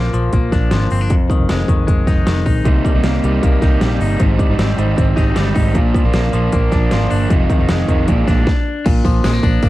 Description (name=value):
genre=jangly indie pop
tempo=155 BPM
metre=4/4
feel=straight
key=unclear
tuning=A4 = 440 Hz
part: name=electric guitar at the edge of break-up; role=arpeggios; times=0.0-9.7 s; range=F2 to Eb4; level=-20 LUFS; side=left 3 dB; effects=slapback echo
part: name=vintage muted fingered electric bass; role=bass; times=0.0-9.7 s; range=F1 to C2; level=-18 LUFS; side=equal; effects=none
part: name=pop drum kit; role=drums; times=0.1-9.7 s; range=crash cymbal, hi-hat, kick drum, ride cymbal, snare drum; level=-16 LUFS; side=equal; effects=none
part: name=crunchy overdriven guitar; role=accompaniment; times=2.7-8.5 s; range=Ab2 to Eb4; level=-20 LUFS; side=right 4 dB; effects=none
part: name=tambourine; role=percussion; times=8.9-9.7 s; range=none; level=-39 LUFS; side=right 15 dB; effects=none
room=light reverb, digital ambience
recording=dark, warm production, vinyl crackle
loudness=-13 LUFS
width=side -16 dB against mid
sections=0.0-8.8 A section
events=stop 8.5-8.8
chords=0.0 Bb; 1.1 Fm7; 2.7 Cm7; 4.2 Abmaj7; 5.8 Bb; 7.3 Fm7; 8.1 Bb7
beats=0.33 0.72 | 1.10 1.49 1.88 2.27 | 2.65 3.04 3.43 3.82 | 4.20 4.59 4.98 5.37 | 5.75 6.14 6.53 6.92 | 7.30 7.69 8.08 8.46 | 8.85 9.24 9.62